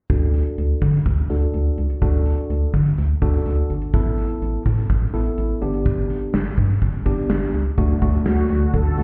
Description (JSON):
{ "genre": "synth-pop", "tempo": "125 BPM", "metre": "4/4", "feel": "straight", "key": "D major", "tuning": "A4 = 440 Hz", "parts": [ { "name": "tine electric piano", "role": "accompaniment", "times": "0.1-9.0 s", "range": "A3 to A4", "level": "-28 LUFS", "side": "equal", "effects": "low-pass filter" }, { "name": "rubbery square bass", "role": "bass", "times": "0.1-9.0 s", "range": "G1 to D3", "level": "-22 LUFS", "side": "equal", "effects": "none" }, { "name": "gated 80s drum kit", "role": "drums", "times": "0.1-9.0 s", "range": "hi-hat, kick drum, snare drum", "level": "-25 LUFS", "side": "equal", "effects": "none" }, { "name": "phased string machine", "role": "sustained chords", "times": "7.8-9.0 s", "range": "D3 to F#4", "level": "-30 LUFS", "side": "equal", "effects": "ensemble chorus, phaser" }, { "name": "mellow synth brass", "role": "melody", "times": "8.3-9.0 s", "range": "F#4 to A4", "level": "-28 LUFS", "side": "equal", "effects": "chorus, slapback echo" } ], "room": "light reverb, small room reverb", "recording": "heard muffled through a wall, club reverb, EQ", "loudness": "-20 LUFS", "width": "mono", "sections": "0.1-7.8 A section; 7.8-9.0 B section", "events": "filter sweep on tine electric piano 0.1-7.8", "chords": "0.1 D; 3.9 Asus2; 5.6 G; 7.8 D" }